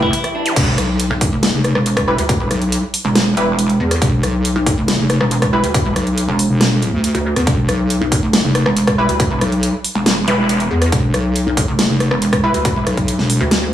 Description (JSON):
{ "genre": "heavy wobble dubstep", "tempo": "139 BPM", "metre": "4/4", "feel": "half-time", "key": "E phrygian", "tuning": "A4 = 440 Hz", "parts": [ { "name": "clean electric guitar", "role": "melody", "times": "0.0-0.5 s", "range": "D4 to E4", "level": "-23 LUFS", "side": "equal", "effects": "digital delay" }, { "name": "supersaw chords", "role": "sustained chords", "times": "0.0-0.6 s", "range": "E3 to E5", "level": "-25 LUFS", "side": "equal", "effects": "sidechain pumping, low-pass filter" }, { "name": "orchestra-hit-like synth stab", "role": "stabs", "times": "0.0-5.6, 9.0-12.6 s", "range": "G3 to B4", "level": "-21 LUFS", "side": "right 1 dB", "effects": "built-in reverb, vintage 12-bit sampler grit, digital delay" }, { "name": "pulsing pluck wobble bass", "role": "bass", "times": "0.0-13.7 s", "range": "E1 to E2", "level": "-17 LUFS", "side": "equal", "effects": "chorus, overdrive" }, { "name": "electronic kick drum", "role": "drums", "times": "0.0-13.1 s", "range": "none", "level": "-19 LUFS", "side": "equal", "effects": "none" }, { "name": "dubstep drum kit", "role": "drums", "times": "0.1-13.6 s", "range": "crash cymbal, hi-hat, rim click, snare drum", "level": "-18 LUFS", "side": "equal", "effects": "none" }, { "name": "zap", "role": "sound effects", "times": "0.5-0.6, 10.3-10.4 s", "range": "none", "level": "-23 LUFS", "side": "equal", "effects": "none" }, { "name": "wobble bass", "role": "bass", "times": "0.6-13.4 s", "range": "E1 to E2", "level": "-16 LUFS", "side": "equal", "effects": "chorus, overdrive" } ], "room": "light reverb", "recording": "studio reverb", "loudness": "-13 LUFS", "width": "side -11 dB against mid", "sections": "0.6-13.7 A section", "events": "break 0.1-0.6; drop 0.6-13.7", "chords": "0.0 Em" }